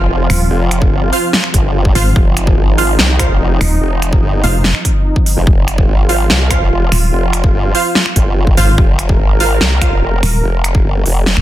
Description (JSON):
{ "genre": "heavy wobble dubstep", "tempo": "145 BPM", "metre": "4/4", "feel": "half-time", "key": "F minor", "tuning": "A4 = 437 Hz", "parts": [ { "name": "supersaw pad", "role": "sustained chords", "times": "0.0-11.4 s", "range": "F3 to Bb4", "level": "-20 LUFS", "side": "right 1 dB", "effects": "vintage 12-bit sampler grit, sidechain pumping, low-pass filter" }, { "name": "formant-sweep wobble bass", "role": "bass", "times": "0.0-11.4 s", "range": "F1 to C2", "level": "-15 LUFS", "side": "equal", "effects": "chorus, overdrive" }, { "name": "pulsing pluck wobble bass", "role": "bass", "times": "0.3-11.4 s", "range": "Eb1 to Ab1", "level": "-12 LUFS", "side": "equal", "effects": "chorus, overdrive" }, { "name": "big-room dance drum kit", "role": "drums", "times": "0.3-11.4 s", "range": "finger snaps, hi-hat, snare drum", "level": "-17 LUFS", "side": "equal", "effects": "soft clipping on snare" }, { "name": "electronic kick drum", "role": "drums", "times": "0.8-10.8 s", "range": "none", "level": "-12 LUFS", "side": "equal", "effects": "none" }, { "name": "orchestra-hit-like synth stab", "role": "stabs", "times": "1.1-9.9 s", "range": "F4 to F5", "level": "-20 LUFS", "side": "right 3 dB", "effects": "built-in reverb, dub echo" } ], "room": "little or no reverb", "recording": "dense, heavily limited modern master", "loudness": "-10 LUFS", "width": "side -14 dB against mid", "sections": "0.0-11.4 A section", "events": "none", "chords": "0.0 F5" }